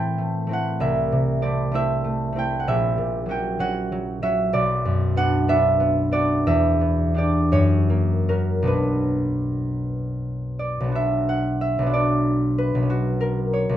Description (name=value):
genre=classical, solo harp piece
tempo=51-66 BPM (dotted quarters)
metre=6/8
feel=rubato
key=B minor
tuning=A4 = 444 Hz
part: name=concert harp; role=solo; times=0.0-13.8 s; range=A#1 to A5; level=-20 LUFS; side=equal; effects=none
room=light reverb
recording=minimal, uncompressed stereo recording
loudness=-20 LUFS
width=side -11 dB against mid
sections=0.0-11.0 A section; 11.0-13.8 B section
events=none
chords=0.0 Am; 0.8 Am/C; 2.7 F#7/A#; 4.5 Bm; 6.5 Em7; 7.5 F#; 8.7 Bm; 12.9 F#/B